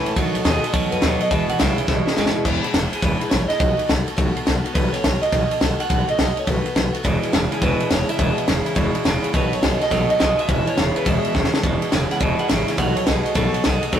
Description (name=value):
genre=rockabilly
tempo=209 BPM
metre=4/4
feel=swing 64% on 8ths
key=E major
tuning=A4 = 440 Hz
part: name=electric guitar through a small old amp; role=melody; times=0.0-13.6 s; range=G#4 to F#5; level=-25 LUFS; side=right 1 dB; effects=analog delay
part: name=picked steel-string acoustic guitar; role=accompaniment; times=0.0-14.0 s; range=E2 to F#4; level=-26 LUFS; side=left 3 dB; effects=none
part: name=twangy electric guitar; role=riff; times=0.0-2.4, 7.1-14.0 s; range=E2 to G#3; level=-24 LUFS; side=right 2 dB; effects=spring reverb
part: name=upright bass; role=bass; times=0.0-14.0 s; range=E1 to F#2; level=-24 LUFS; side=equal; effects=none
part: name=compact cocktail drum kit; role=drums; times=0.1-14.0 s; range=crash cymbal, kick drum, ride cymbal, snare drum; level=-22 LUFS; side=equal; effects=none
room=moderate studio reverb, RT60 0.7 s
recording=rough rehearsal-room recording, warm saturation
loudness=-17 LUFS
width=side -9 dB against mid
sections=0.0-2.5 A section; 2.5-11.6 B section; 11.6-14.0 C section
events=drum fill 1.9-2.5, 11.3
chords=0.2 B7; 1.3 E; 3.6 B7; 7.0 E; 9.3 B7; 10.5 E; 12.8 B7